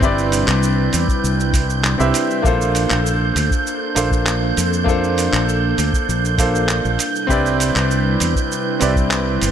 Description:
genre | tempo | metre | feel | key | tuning
sunset chillout | 99 BPM | 4/4 | straight | Bb major | A4 = 440 Hz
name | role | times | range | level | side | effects
clear concert grand piano | accompaniment | 0.0-9.5 s | Bb3 to E5 | -20 LUFS | equal | auto-pan, ping-pong delay
airy breathy pad | sustained chords | 0.0-9.5 s | C3 to B4 | -24 LUFS | right 1 dB | chorus
mellow fretless electric bass | bass | 0.0-9.5 s | G1 to F2 | -20 LUFS | equal | tube saturation, analog chorus
dusty soul sampler-style drum kit | drums | 0.0-9.5 s | handclaps, hi-hat, shaker | -23 LUFS | right 2 dB | overdrive, small room ambience
electronic kick drum | drums | 0.0-9.1 s | none | -19 LUFS | equal | overdrive, small room ambience
wind-like tuned noise texture | texture | 0.0-9.5 s | G6 | -25 LUFS | right 6 dB | built-in reverb
room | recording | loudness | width
light reverb | none | -15 LUFS | side -9 dB against mid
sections
0.0-9.5 A section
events
none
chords
0.0 Cmaj9; 2.4 Bbmaj9; 7.0 Cmaj9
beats
| 0.02 0.63 1.23 1.84 | 2.45 3.05 3.66 4.26 | 4.87 5.48 6.08 6.69 | 7.29 7.90 8.51 9.11

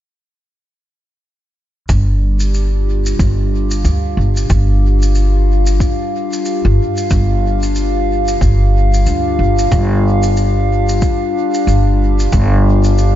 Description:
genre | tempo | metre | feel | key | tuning
ambient dub | 92 BPM | 4/4 | swing 60% on 16ths | unclear | A4 = 440 Hz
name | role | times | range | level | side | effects
warbly tape-like pad | sustained chords | 1.9-13.2 s | G3 to F5 | -18 LUFS | left 1 dB | chorus, built-in reverb
upright bass | bass | 1.9-13.2 s | G1 to D2 | -13 LUFS | equal | none
electronic kick drum | drums | 1.9-12.5 s | none | -16 LUFS | equal | overdrive
shaker | drums | 1.9-13.1 s | none | -30 LUFS | equal | dub echo
room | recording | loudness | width
little or no reverb | nothing above 7.5 kHz | -12 LUFS | side -12 dB against mid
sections
1.9-13.2 A section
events
none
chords
1.9 G7(no3)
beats
| 1.89 2.54 3.19 3.85 | 4.50 5.15 5.80 6.46 | 7.11 7.76 8.41 9.06 | 9.72 10.37 11.02 11.67 | 12.32 12.98

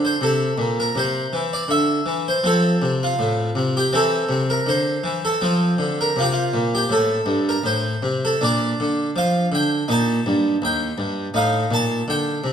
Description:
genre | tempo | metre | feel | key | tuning
classical, baroque-style suite movement for harpsichord | 81 BPM | 4/4 | rubato | F major, Bb major from 8.4 s | A4 = 441 Hz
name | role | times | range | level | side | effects
harpsichord | solo | 0.0-12.5 s | Eb2 to A5 | -18 LUFS | equal | none
room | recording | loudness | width
wet recital hall reverb, RT60 1.5 s | none | -18 LUFS | side -8 dB against mid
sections
0.0-12.5 A section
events
none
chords
0.0 C7; 2.4 F; 3.9 C; 5.4 F; 8.4 Bb; 9.9 Eb; 11.3 Am7b5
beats
0.22 0.96 1.69 | 2.44 3.19 3.93 4.67 | 5.42 6.17 6.90 7.63 | 8.40 9.15 9.89 10.62 | 11.34 12.07

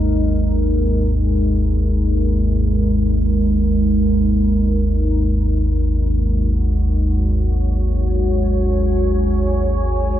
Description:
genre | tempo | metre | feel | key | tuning
dark ambient drone | free time | none | none | unclear | A4 = 440 Hz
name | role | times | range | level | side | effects
deep dark ambient pad | sustained chords | 0.0-10.2 s | G#3 to G#5 | -20 LUFS | right 1 dB | chorus, built-in reverb
deep rumbling drone | drone | 0.0-10.2 s | G#1 to D#2 | -17 LUFS | equal | built-in reverb, wide subtle chorus
room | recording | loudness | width
moderate huge ambient reverb, RT60 8.8 s | in a vast, echoing space, nothing above 10.9 kHz | -15 LUFS | side -12 dB against mid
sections
0.0-10.2 A section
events
none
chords
0.0 G#5; 4.3 F#add9/G#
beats
free time

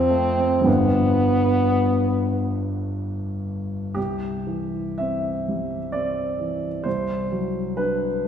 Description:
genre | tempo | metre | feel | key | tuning
classical, romantic duo for French horn and grand piano | 53-66 BPM | 3/4 | rubato | C major | A4 = 440 Hz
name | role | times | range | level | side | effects
warm French horn | melody | 0.0-2.9 s | B3 to C4 | -20 LUFS | left 1 dB | none
dark baby grand piano | accompaniment | 0.0-8.3 s | G1 to E5 | -23 LUFS | equal | none
room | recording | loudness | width
wet scoring stage reverb, RT60 1.9 s | heard from further back in the room | -21 LUFS | side -8 dB against mid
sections
0.0-4.0 A section; 4.0-8.3 B section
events
none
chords
0.0 F; 0.7 G; 4.0 C; 6.9 D7/C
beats
| 0.66 1.79 2.90 | 3.97 5.00 5.95 | 6.86 7.79

